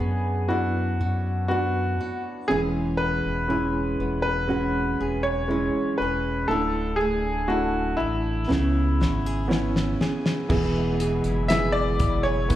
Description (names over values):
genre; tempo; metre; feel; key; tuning
pop ballad; 60 BPM; 4/4; straight; unclear; A4 = 439 Hz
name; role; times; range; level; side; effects
bright concert grand piano; melody; 0.0-12.6 s; E4 to E5; -27 LUFS; left 1 dB; slapback echo
warm grand piano; accompaniment; 0.0-12.6 s; C#3 to B4; -27 LUFS; right 2 dB; none
flamenco guitar; arpeggios; 0.0-12.6 s; C#3 to A4; -35 LUFS; left 2 dB; slapback echo
sub bass with octave; bass; 0.0-12.6 s; D1 to F#2; -28 LUFS; equal; none
damped 70s drum kit; drums; 8.5-12.6 s; crash cymbal, hi-hat, kick drum, snare drum; -26 LUFS; left 1 dB; none
bright tonewheel organ; sustained chords; 10.5-12.6 s; B2 to E4; -31 LUFS; left 1 dB; chorus vibrato, fast rotary speaker
room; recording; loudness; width
light reverb, small room reverb; live gig heard through the venue's PA, club reverb; -22 LUFS; side -13 dB against mid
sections
0.0-10.5 A section; 10.5-12.6 B section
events
drum fill 8.5-10.5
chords
0.0 Bm/F#; 2.5 E6; 6.5 Dsus2; 8.5 C#m7; 10.5 E